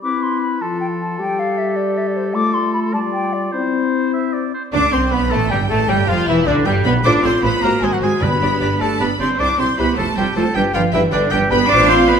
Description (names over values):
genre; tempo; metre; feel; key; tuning
quick classical-period movement for symphony orchestra; 103 BPM (dotted quarters); 6/8; straight; unclear; A4 = 439 Hz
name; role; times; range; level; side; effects
bright clarinet; second line; 0.0-4.5 s; E4 to G4; -24 LUFS; equal; none
hollow concert flute; second line; 0.0-12.2 s; C5 to D6; -22 LUFS; left 3 dB; none
warm oboe; second line; 0.0-12.2 s; D4 to E5; -23 LUFS; right 2 dB; none
dark French horn section; sustained chords; 0.0-12.2 s; D3 to C5; -22 LUFS; left 4 dB; none
rich studio violin section; melody; 4.7-12.2 s; G3 to G5; -25 LUFS; left 3 dB; none
clear studio violin section; second line; 4.7-12.2 s; D5 to D6; -25 LUFS; left 2 dB; none
rich studio viola section; accompaniment; 4.7-12.2 s; D3 to C5; -23 LUFS; right 1 dB; none
rich studio cello section; bass; 4.7-12.2 s; D3 to D4; -20 LUFS; right 4 dB; none
rich studio double bass section; bass; 4.7-12.2 s; E1 to D2; -22 LUFS; right 3 dB; none
timpani; percussion; 8.2-8.8 s; G2; -25 LUFS; left 1 dB; none
room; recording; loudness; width
wet recital hall reverb, RT60 1.6 s; minimal, uncompressed stereo recording; -15 LUFS; side -7 dB against mid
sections
0.0-4.7 A section; 4.7-12.2 B section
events
none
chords
0.0 C; 0.6 F; 1.2 Gsus2; 2.3 F/A; 2.9 G5; 3.5 C; 4.7 Bm; 5.3 Gsus2; 5.9 G; 7.0 F; 7.6 Ab7; 8.2 G; 9.4 C; 10.0 F; 10.6 G